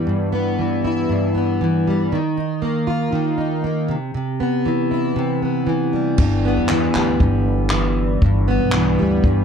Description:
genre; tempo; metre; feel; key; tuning
acoustic pop; 118 BPM; 4/4; straight; G major; A4 = 440 Hz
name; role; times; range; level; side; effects
fingerpicked plugged-in steel-string acoustic guitar; accompaniment; 0.0-9.4 s; G2 to F4; -18 LUFS; equal; double-tracked left and right
upright bass; bass; 6.2-9.4 s; G1 to E2; -20 LUFS; equal; none
compact cocktail drum kit; drums; 6.2-9.4 s; crash cymbal, handclaps, kick drum; -20 LUFS; equal; none
room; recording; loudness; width
light reverb; dry, close 1970s-style studio recording; -17 LUFS; side -7 dB against mid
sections
0.0-6.2 A section; 6.2-9.4 B section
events
none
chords
0.0 G6; 2.1 Ebsus2; 3.9 Cmaj7; 6.2 G6

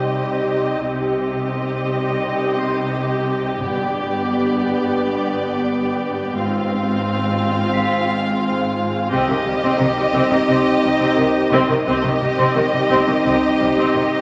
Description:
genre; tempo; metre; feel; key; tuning
cinematic, suspense film score; 87 BPM; 4/4; straight; C harmonic minor; A4 = 440 Hz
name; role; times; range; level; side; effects
rich chamber violin section; melody; 0.0-14.2 s; D5 to F5; -27 LUFS; equal; none
rich chamber violin section; second line; 0.0-14.2 s; F4 to G4; -27 LUFS; equal; none
rich chamber viola section; accompaniment; 0.0-14.0 s; Eb3 to C4; -26 LUFS; equal; none
dark French horn section; sustained chords; 0.0-14.2 s; G3 to F4; -26 LUFS; equal; none
wind-like tuned noise texture; sustained chords; 0.0-14.2 s; B3 to G5; -30 LUFS; equal; built-in reverb
warm chamber double bass section; bass; 0.0-14.0 s; G1 to C2; -34 LUFS; equal; none
warm symphonic cello section; bass; 0.0-14.0 s; G2 to C3; -27 LUFS; equal; none
impact; sound effects; 0.0-0.9 s; none; barely audible; none; none
concert harp; texture; 0.0-9.8 s; C6 to C7; -35 LUFS; equal; none
timpani; percussion; 3.6-4.6 s; G2; -37 LUFS; equal; none
room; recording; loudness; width
wet scoring stage reverb, RT60 1.6 s; none; -19 LUFS; mono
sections
0.0-14.2 A section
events
impact 0.0-0.9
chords
0.0 Cm; 3.6 G; 6.4 Fm/Ab; 9.1 Cm

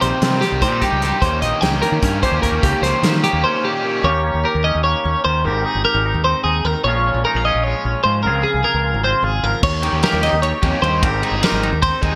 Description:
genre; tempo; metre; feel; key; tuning
math rock and midwest emo; 300 BPM (eighths); 7/8; straight; Ab major; A4 = 440 Hz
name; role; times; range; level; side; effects
twangy electric guitar; accompaniment; 0.0-12.2 s; Eb2 to Ab4; -26 LUFS; equal; spring reverb
twelve-string electric guitar; arpeggios; 0.0-12.2 s; G4 to G5; -21 LUFS; equal; subtle chorus
cranked stack guitar; riff; 0.0-4.0, 9.8-12.2 s; C3 to G4; -25 LUFS; equal; overdrive
growling fingered electric bass; bass; 0.0-12.2 s; G1 to Eb3; -24 LUFS; equal; overdrive
loose indie drum kit; drums; 0.0-3.3, 9.6-12.1 s; crash cymbal, hi-hat, kick drum, ride cymbal, snare drum; -24 LUFS; equal; gated reverb
room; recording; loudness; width
light reverb, small room ambience; bright 1980s-style digital production; -17 LUFS; mono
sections
0.0-4.0 A section; 4.0-12.2 B section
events
break 3.4-4.0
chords
0.0 Cm7; 4.0 Eb7; 5.4 Abmaj7; 6.8 Bbm7; 8.2 Dbmaj7; 9.6 Eb7; 11.0 Abmaj7

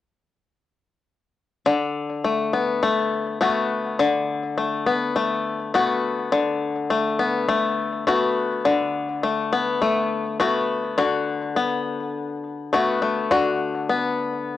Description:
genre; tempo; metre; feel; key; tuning
folktronica; 103 BPM; 4/4; swing 56% on 16ths; B minor; A4 = 439 Hz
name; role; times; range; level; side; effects
bluegrass banjo; solo; 1.7-14.6 s; D3 to F#4; -20 LUFS; left 3 dB; cassette tape
room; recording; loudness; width
moderate studio ambience, RT60 0.5 s; home recording on cassette; -20 LUFS; side -12 dB against mid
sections
1.7-11.0 A section; 11.0-14.6 B section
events
none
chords
1.7 Bm7

